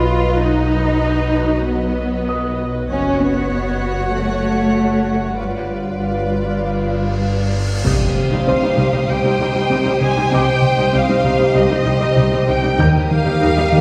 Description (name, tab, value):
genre	cinematic, suspense film score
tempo	97 BPM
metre	4/4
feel	straight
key	C minor from 7.8 s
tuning	A4 = 440 Hz
part	rich studio violin section	melody	0.0-13.8 s	D5 to Ab5	-27 LUFS	equal	none
part	rich studio viola section	accompaniment	0.0-13.8 s	F#3 to Db5	-26 LUFS	equal	none
part	deep dark ambient pad	sustained chords	0.0-13.8 s	Bb4 to Bb5	-29 LUFS	equal	chorus, built-in reverb
part	dark studio cello section	bass	0.0-13.8 s	C2 to F4	-24 LUFS	equal	none
part	warm studio double bass section	bass	0.0-13.8 s	Gb1 to Eb2	-26 LUFS	equal	none
part	deep rumbling drone	drone	0.0-13.8 s	Gb1 to Eb2	-31 LUFS	equal	built-in reverb
part	warm grand piano	texture	0.0-13.8 s	B4 to G6	-30 LUFS	equal	none
part	cymbal swell and impact	sound effects	7.0-10.3 s	none	-29 LUFS	equal	none
part	warm studio violin section	second line	7.8-13.8 s	G4 to C5	-24 LUFS	equal	none
part	rich studio violin section	texture	7.8-13.8 s	C6 to F6	-34 LUFS	equal	none
part	fat analog bass	riff	7.9-13.8 s	C3 to Eb4	-21 LUFS	equal	none
room	wet recital hall reverb, RT60 1.6 s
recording	heard from further back in the room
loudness	-17 LUFS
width	mono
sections	0.0-7.8 A section; 7.8-13.8 B section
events	cymbal swell 7.0-7.8; impact 7.8-10.3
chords	0.0 B; 2.9 Gbm; 5.4 G7; 7.8 Cm; 12.8 Eb